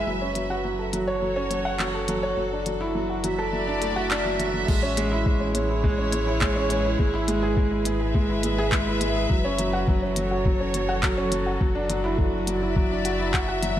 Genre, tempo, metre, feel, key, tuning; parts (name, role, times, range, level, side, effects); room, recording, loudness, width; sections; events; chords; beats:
piano and strings electronica; 104 BPM; 4/4; straight; A major; A4 = 440 Hz
warm studio string section; sustained chords; 0.0-13.8 s; F#3 to E5; -30 LUFS; right 1 dB
dark upright piano; riff; 0.0-13.8 s; F#3 to F#5; -25 LUFS; equal; tape echo
warm sub bass; bass; 0.0-13.8 s; F#1 to A1; -30 LUFS; equal; sidechain pumping
minimal click drum kit; drums; 0.4-13.7 s; crash cymbal, handclaps, hi-hat; -30 LUFS; left 1 dB
electronic kick drum; drums; 4.7-13.5 s; -24 LUFS; equal
moderate echo chamber reverb, RT60 2.0 s; -22 LUFS; side -11 dB against mid
0.0-4.7 A section; 4.7-13.8 B section
build-up 0.0-4.7; drop 4.7-13.8
0.1 F#m; 2.4 Dadd9/F#; 4.7 Amaj7; 7.0 E/G#; 9.3 F#m; 11.6 Dadd9/F#
| 0.07 0.65 1.22 1.80 | 2.38 2.95 3.53 4.11 | 4.68 5.26 5.84 6.42 | 6.99 7.57 8.14 8.72 | 9.30 9.88 10.45 11.03 | 11.61 12.18 12.76 13.34